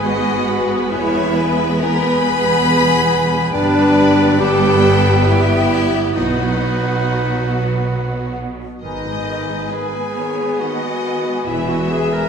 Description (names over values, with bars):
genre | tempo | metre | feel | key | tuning
cinematic | 69 BPM | 3/4 | rubato | G# minor | A4 = 440 Hz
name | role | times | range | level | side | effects
rich studio violin section | melody | 0.0-12.3 s | F#4 to E5 | -26 LUFS | left 4 dB | none
mellow clarinet | second line | 0.0-12.3 s | D4 to B4 | -21 LUFS | equal | none
mellow oboe | second line | 0.0-12.3 s | B4 | -25 LUFS | right 3 dB | none
rich studio violin section | second line | 0.0-12.3 s | D5 to B5 | -25 LUFS | left 4 dB | none
small flute group | second line | 0.0-12.3 s | F#5 to G#5 | -25 LUFS | left 3 dB | none
warm studio viola section | accompaniment | 0.0-12.3 s | D#3 to B3 | -22 LUFS | right 3 dB | none
mellow French horn section | sustained chords | 0.0-12.3 s | B3 to A#4 | -24 LUFS | left 3 dB | none
rich studio double bass section | bass | 0.0-12.2 s | E1 to B1 | -24 LUFS | right 2 dB | none
rich symphonic cello section | bass | 0.0-12.2 s | E2 to B2 | -22 LUFS | right 2 dB | none
room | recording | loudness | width
wet recital hall reverb, RT60 1.3 s | recorded in a church or concert hall | -14 LUFS | side -6 dB against mid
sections
0.0-12.3 A section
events
none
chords
0.0 G#m; 0.9 E; 3.5 G; 6.2 B; 8.8 G#m; 11.5 E